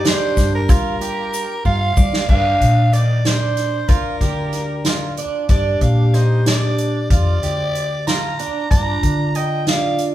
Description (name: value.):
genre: progressive instrumental, band music in an uneven meter.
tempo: 187 BPM (eighths).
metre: 5/8.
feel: straight.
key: G minor.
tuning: A4 = 440 Hz.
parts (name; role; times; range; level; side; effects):
breathy soprano saxophone; melody; 0.0-10.0 s; Bb4 to Bb5; -23 LUFS; left 1 dB; none.
trombone with bucket mute; second line; 0.0-10.1 s; D4 to G4; -29 LUFS; left 3 dB; none.
fingerpicked twelve-string acoustic guitar; arpeggios; 0.0-10.1 s; Eb3 to Eb5; -24 LUFS; right 6 dB; tape echo.
hollow-body short-scale fingered electric bass; bass; 0.0-10.1 s; D2 to G3; -20 LUFS; equal; none.
soft-mallet drum kit; drums; 0.1-10.1 s; crash cymbal, hi-hat, kick drum, snare drum; -18 LUFS; equal; none.
tube shaker; percussion; 0.1-2.3 s; none; -34 LUFS; left 5 dB; none.
room: wet large studio reverb, RT60 1.1 s.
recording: band playing live in one room.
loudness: -15 LUFS.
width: side -13 dB against mid.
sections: 0.0-2.3 A section; 2.3-10.1 B section.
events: drum fill 1.7-2.3.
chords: 0.0 Gm7; 8.7 Bb.